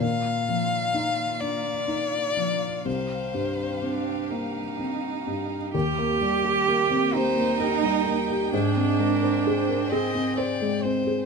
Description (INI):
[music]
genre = neoclassical piano and strings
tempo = 43 BPM (dotted quarters)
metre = 6/8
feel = rubato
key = unclear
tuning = A4 = 440 Hz
[part]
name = rich violin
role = melody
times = 0.0-11.3 s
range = G4 to F5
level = -28 LUFS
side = left 4 dB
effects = none
[part]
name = rich cello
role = second line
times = 0.0-10.4 s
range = Eb3 to G4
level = -27 LUFS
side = right 8 dB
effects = none
[part]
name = felt-muted upright piano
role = accompaniment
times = 0.0-11.3 s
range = C2 to C5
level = -26 LUFS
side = left 2 dB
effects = none
[part]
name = rich chamber string section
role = sustained chords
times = 0.0-11.3 s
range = G3 to G5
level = -35 LUFS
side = right 1 dB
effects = none
[sound]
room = moderate large studio reverb, RT60 1.1 s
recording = minimal, uncompressed stereo recording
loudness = -22 LUFS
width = side -4 dB against mid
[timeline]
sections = 0.0-5.7 A section; 5.7-11.3 B section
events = none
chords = 0.0 Bbsus4; 2.9 Cm; 5.7 Eb; 8.5 Ab